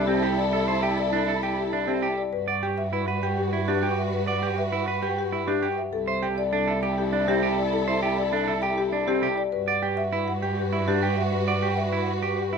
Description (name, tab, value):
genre	classical, minimalist pattern music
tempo	100 BPM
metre	3/4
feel	straight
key	G major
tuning	A4 = 441 Hz
part	marimba with medium hard mallets	melody	0.0-12.6 s	G4 to G5	-28 LUFS	left 9 dB	none
part	warm studio string section	sustained chords	0.0-12.6 s	E4 to B4	-30 LUFS	right 1 dB	none
part	clean electric guitar	arpeggios	0.0-12.6 s	C4 to D5	-27 LUFS	right 7 dB	none
part	rich cello	bass	0.0-12.6 s	C2 to G2	-29 LUFS	right 2 dB	none
room	moderate large studio reverb, RT60 0.9 s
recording	minimal, uncompressed stereo recording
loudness	-23 LUFS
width	side -6 dB against mid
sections	0.0-12.6 A section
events	none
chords	0.0 C6; 2.3 Gmaj7; 5.9 C6; 9.5 Gmaj7